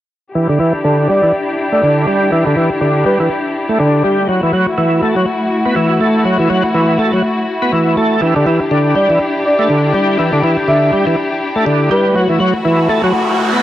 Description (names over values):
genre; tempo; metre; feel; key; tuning
breakbeat; 122 BPM; 4/4; swing 57% on 16ths; E minor; A4 = 440 Hz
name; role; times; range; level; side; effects
bright tonewheel organ; riff; 0.4-13.6 s; D3 to B3; -13 LUFS; equal; overdrive, chorus vibrato, slow rotary speaker, tube saturation, low-pass filter, analog delay
warm studio string section; stabs; 0.4-13.6 s; A3 to G4; -17 LUFS; left 2 dB; vintage 12-bit sampler grit, low-pass filter, analog delay
breathy flute-like synth lead; melody; 1.1-3.3, 9.0-12.2 s; B4 to E5; -16 LUFS; equal; chorus, small speaker sound, analog delay
riser; sound effects; 12.5-13.6 s; none; -20 LUFS; right 2 dB; none
room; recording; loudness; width
moderate studio reverb, RT60 0.6 s; dry, gritty hardware recording; -11 LUFS; side -13 dB against mid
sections
0.4-13.6 A section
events
filter sweep on tonewheel organ 0.4-13.6; riser 12.5-13.6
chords
0.4 Em7; 4.3 Esus24; 8.2 Em7; 12.2 Esus24